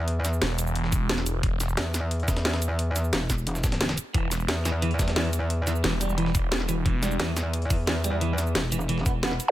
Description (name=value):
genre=dark technical drum and bass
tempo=177 BPM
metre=4/4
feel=straight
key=E minor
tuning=A4 = 440 Hz
part: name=metallic wobble bass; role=bass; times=0.0-9.4 s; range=E1 to E2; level=-26 LUFS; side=equal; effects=chorus
part: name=breakbeat sampler-style drum kit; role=drums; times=0.1-9.5 s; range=hi-hat, snare drum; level=-37 LUFS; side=equal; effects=none
part: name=drum and bass drum kit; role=drums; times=0.1-9.5 s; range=cabasa, hi-hat, snare drum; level=-29 LUFS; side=equal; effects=none
part: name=phased detuned saw bass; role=bass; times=0.4-1.8, 4.1-7.2 s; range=E1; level=-27 LUFS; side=equal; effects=phaser, overdrive
part: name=electronic kick drum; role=drums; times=0.9-9.1 s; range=none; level=-25 LUFS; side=equal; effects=none
part: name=electric guitar at the edge of break-up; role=arpeggios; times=4.1-9.3 s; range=E3 to B3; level=-31 LUFS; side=right 2 dB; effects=spring reverb, sidechain pumping, dub echo
room=digital ambience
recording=none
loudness=-23 LUFS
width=side -14 dB against mid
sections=0.0-9.5 A section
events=none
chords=0.0 E5